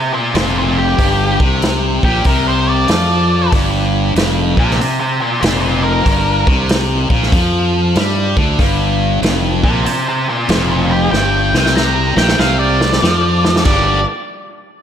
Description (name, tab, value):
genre	blues rock power trio and southern rock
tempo	95 BPM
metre	4/4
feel	swing 65% on 8ths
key	G minor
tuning	A4 = 440 Hz
part	octave-fuzz lead guitar	melody	0.0-14.0 s	G4 to Bb5	-17 LUFS	equal	distortion, slapback echo
part	distorted electric guitar	riff	0.3-14.0 s	F2 to G4	-17 LUFS	left 1 dB	overdrive, slapback echo
part	fuzz fingered electric bass	bass	0.3-14.0 s	F1 to G2	-17 LUFS	equal	overdrive
part	vintage drum kit	drums	0.3-13.8 s	crash cymbal, hi-hat, kick drum, snare drum	-17 LUFS	equal	none
room	moderate lush hall reverb, RT60 1.9 s, studio reverb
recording	big arena sound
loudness	-12 LUFS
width	side -9 dB against mid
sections	0.0-13.7 A section; 13.7-14.8 B section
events	drum fill 11.1-13.7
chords	0.0 Gm